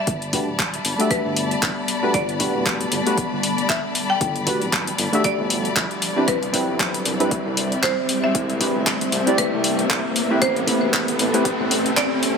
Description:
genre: deep house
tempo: 116 BPM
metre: 4/4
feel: swing 57% on 16ths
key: G major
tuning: A4 = 438 Hz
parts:
  - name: buzzing marimba with hard mallets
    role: melody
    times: 0.0-12.2 s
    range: B4 to G5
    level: -26 LUFS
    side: equal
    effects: ping-pong delay
  - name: deep dark ambient pad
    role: sustained chords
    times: 0.8-12.4 s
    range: G3 to F#5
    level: -30 LUFS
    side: left 1 dB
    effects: chorus, built-in reverb, sidechain pumping
  - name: riser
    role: sound effects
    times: 0.8-12.4 s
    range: none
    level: -28 LUFS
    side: right 1 dB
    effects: none
  - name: warm symphonic string section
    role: texture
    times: 0.0-12.4 s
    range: G3 to B5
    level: -27 LUFS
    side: left 2 dB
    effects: sidechain pumping
  - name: smooth synth bass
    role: bass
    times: 0.1-12.1 s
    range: D1 to C2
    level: -30 LUFS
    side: equal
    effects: sidechain pumping, high-pass filter
  - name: deep house drum kit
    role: drums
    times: 0.1-12.3 s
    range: handclaps, hi-hat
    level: -23 LUFS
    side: left 1 dB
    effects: overdrive, high-pass filter on hats, high-pass filter on snare, high-pass filter on room
  - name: electronic kick drum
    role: drums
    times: 0.1-12.1 s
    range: none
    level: -28 LUFS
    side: equal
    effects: overdrive, high-pass filter on kick, high-pass filter on room
  - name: deep mellow chord stab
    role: stabs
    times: 0.3-11.5 s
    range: A3 to E5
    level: -24 LUFS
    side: equal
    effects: chorus, sidechain pumping, dub echo
room: moderate plate reverb, RT60 2.5 s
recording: none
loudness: -18 LUFS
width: side -6 dB against mid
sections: 0.0-12.4 A section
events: build-up 0.0-12.4; filter sweep on ambient pad 0.0-12.4; riser 0.8-12.4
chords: 0.0 Gmaj9; 6.3 Cmaj7; 10.4 Am9

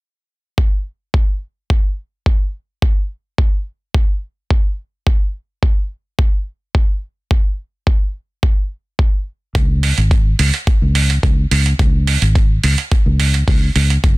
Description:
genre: nu-disco, nu disco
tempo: 107 BPM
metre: 4/4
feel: straight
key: unclear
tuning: A4 = 440 Hz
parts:
  - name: electronic kick drum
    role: drums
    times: 0.6-14.2 s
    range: none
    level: -14 LUFS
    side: equal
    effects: none
  - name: fingered electric bass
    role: bass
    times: 9.6-14.2 s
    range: Gb1 to Db2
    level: -15 LUFS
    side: equal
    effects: none
  - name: electronic hi-hat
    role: drums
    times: 9.6-14.2 s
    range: none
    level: -20 LUFS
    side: right 6 dB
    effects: none
room: little or no reverb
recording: dense, heavily limited modern master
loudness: -15 LUFS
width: side -22 dB against mid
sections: 0.6-14.2 A section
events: none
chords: none

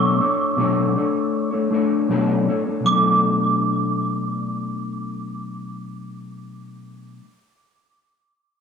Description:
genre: indie pop, bedroom pop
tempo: 79 BPM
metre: 4/4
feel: straight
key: B minor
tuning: A4 = 440 Hz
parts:
  - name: glockenspiel with brass mallets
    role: melody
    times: 0.0-7.2 s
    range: C#6 to D6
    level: -23 LUFS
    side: right 4 dB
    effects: ensemble chorus, ping-pong delay
  - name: mellow electric guitar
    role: accompaniment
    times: 0.0-7.3 s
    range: B2 to C#5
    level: -21 LUFS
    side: left 3 dB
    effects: lush chorus, vibrato effect
room: wet small room reverb, RT60 0.6 s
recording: dark, warm production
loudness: -18 LUFS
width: side -6 dB against mid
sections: 0.0-2.8 A section; 2.8-5.9 B section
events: none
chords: 0.0 Bm9; 2.8 Bm7

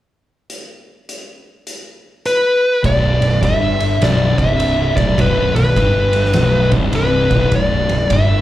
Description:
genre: stoner and doom metal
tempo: 102 BPM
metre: 4/4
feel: swing 64% on 8ths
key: B minor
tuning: A4 = 440 Hz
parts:
  - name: oversized low-tuned drum kit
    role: drums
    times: 0.5-8.3 s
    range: hi-hat, kick drum, ride cymbal, snare drum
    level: -21 LUFS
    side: right 1 dB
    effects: none
  - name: fuzz lead guitar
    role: melody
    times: 2.3-8.4 s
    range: B4 to E5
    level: -17 LUFS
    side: left 1 dB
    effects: distortion
  - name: thick fuzz guitar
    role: riff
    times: 2.8-8.4 s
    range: B1 to G2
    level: -22 LUFS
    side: right 5 dB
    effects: distortion, slapback echo
  - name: fuzz fingered electric bass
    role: bass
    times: 2.8-8.4 s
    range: B0 to G1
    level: -19 LUFS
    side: equal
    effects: overdrive
  - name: thick fuzz guitar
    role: riff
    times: 2.9-8.4 s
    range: B1 to G2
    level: -19 LUFS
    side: left 3 dB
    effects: distortion
room: studio reverb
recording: live gig heard through the venue's PA, club reverb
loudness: -12 LUFS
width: side -14 dB against mid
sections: 0.5-2.8 A section; 2.8-8.4 B section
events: none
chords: 0.5 N.C.; 2.8 Bm

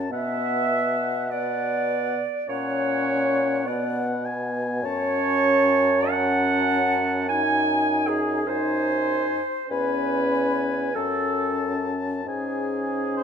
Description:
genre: classical, slow romantic movement for wind quintet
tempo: 44-52 BPM (dotted quarters)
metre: 6/8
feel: rubato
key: unclear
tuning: A4 = 439 Hz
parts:
  - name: warm oboe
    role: second line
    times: 0.0-13.2 s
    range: B#4 to A5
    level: -31 LUFS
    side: left 5 dB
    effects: none
  - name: warm French horn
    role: accompaniment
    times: 0.0-13.2 s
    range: B3 to D#4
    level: -28 LUFS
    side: left 2 dB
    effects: none
  - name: mellow bassoon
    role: bass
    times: 0.0-13.2 s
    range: E2 to B2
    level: -30 LUFS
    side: right 2 dB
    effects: none
  - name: concert flute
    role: melody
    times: 0.1-13.2 s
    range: G#4 to B#5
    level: -30 LUFS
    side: left 8 dB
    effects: none
  - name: warm clarinet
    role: accompaniment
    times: 0.1-13.2 s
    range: G#4 to G#5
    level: -25 LUFS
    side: right 6 dB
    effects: none
room: moderate recital hall reverb, RT60 1.4 s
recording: close, detailed microphones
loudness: -21 LUFS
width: side -7 dB against mid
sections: 0.0-13.2 A section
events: none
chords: 0.1 Bm; 2.5 F#/A#; 3.7 B5; 4.8 F#m; 7.3 G#7/F#; 9.7 C#m/E; 10.9 F#m; 12.3 C#5/G#

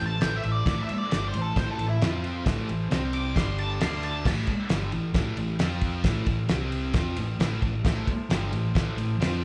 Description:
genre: garage rock duo or trio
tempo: 134 BPM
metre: 4/4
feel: straight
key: A minor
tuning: A4 = 440 Hz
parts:
  - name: octave-fuzz lead guitar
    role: melody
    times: 0.0-4.2 s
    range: E4 to D6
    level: -34 LUFS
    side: equal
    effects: distortion
  - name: combo organ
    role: sustained chords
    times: 0.0-4.3, 7.8-9.4 s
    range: C4 to D5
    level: -42 LUFS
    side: equal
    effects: none
  - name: thick fuzz guitar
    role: riff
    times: 0.0-9.4 s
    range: G2 to F4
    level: -32 LUFS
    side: equal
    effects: distortion
  - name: hollow-body short-scale fingered electric bass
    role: bass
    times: 0.0-9.4 s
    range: G1 to F2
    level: -34 LUFS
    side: equal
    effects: overdrive
  - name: cloth-damped thuddy drum kit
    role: drums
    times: 0.2-9.3 s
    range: crash cymbal, kick drum, ride cymbal, snare drum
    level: -30 LUFS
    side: equal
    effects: vintage 12-bit sampler grit
room: moderate large studio reverb, RT60 0.9 s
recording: band playing live in one room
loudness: -27 LUFS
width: mono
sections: 0.0-4.3 A section; 4.3-9.4 B section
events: lead electric guitar solo 0.0-4.3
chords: 0.0 Am; 2.0 F5; 2.5 Am; 2.9 C5; 3.4 G5; 3.8 D5; 4.3 A5; 5.6 F5; 6.0 A5; 6.5 C5; 6.9 Am

